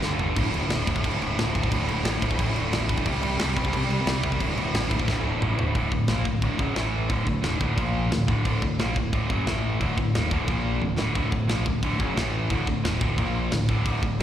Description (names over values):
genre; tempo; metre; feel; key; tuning
heavy metal; 178 BPM; 4/4; straight; unclear; A4 = 440 Hz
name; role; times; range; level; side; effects
sludgy distorted guitar; riff; 0.0-14.2 s; D2 to Bb3; -25 LUFS; equal; overdrive, slapback echo
growling picked electric bass; bass; 0.0-14.2 s; D1 to D2; -28 LUFS; equal; overdrive
tight metal drum kit; drums; 0.0-14.2 s; crash cymbal, kick drum, snare drum, toms; -29 LUFS; equal; none
room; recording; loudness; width
small room ambience; live gig heard through the venue's PA, recital hall reverb; -22 LUFS; side -10 dB against mid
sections
0.0-5.8 A section; 5.8-14.2 B section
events
drum fill 0.0-0.4, 5.1-5.8, 10.8-11.2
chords
0.4 D5; 3.1 C5; 4.4 D5; 5.8 D; 6.8 A5; 7.1 D5; 7.8 Bb5; 8.1 D; 9.5 A5; 9.8 D5; 10.5 Bb5; 10.8 D; 12.2 A5; 12.5 D5; 13.2 Bb5; 13.5 D5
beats
0.03 | 0.36 0.70 1.04 1.37 | 1.71 2.05 2.38 2.72 | 3.06 3.39 3.73 4.07 | 4.41 4.74 5.08 5.42 | 5.75 6.09 6.43 6.76 | 7.10 7.44 7.78 8.11 | 8.45 8.79 9.13 9.46 | 9.80 10.14 10.48 10.81 | 11.15 11.49 11.83 12.16 | 12.50 12.84 13.18 13.52 | 13.86 14.19